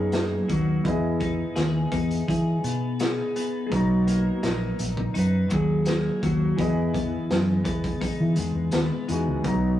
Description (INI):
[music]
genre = indie pop, bedroom pop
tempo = 84 BPM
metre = 4/4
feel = straight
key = unclear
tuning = A4 = 444 Hz
[part]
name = clean lap steel guitar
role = melody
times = 0.0-9.8 s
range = E4 to B4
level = -32 LUFS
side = equal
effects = none
[part]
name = clear upright piano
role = accompaniment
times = 0.0-9.8 s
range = E3 to A#5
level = -30 LUFS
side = right 2 dB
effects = none
[part]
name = twelve-string electric guitar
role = accompaniment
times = 0.0-9.8 s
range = E3 to G#4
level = -31 LUFS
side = left 3 dB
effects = vibrato effect
[part]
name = vintage muted fingered electric bass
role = bass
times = 0.0-9.8 s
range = A#1 to E3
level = -24 LUFS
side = equal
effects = none
[part]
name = raw garage drum kit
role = drums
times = 0.1-9.6 s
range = hi-hat, kick drum, snare drum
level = -30 LUFS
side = equal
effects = none
[sound]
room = moderate stone room reverb, RT60 1.2 s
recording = rough rehearsal-room recording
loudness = -22 LUFS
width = side -12 dB against mid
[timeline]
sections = 0.0-9.8 A section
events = none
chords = 0.0 Bmaj7; 0.9 Emaj7; 3.7 Bmaj7; 6.6 Emaj7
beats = 0.14 | 0.85 1.57 2.29 3.00 | 3.72 4.43 5.15 5.87 | 6.58 7.30 8.01 8.73 | 9.45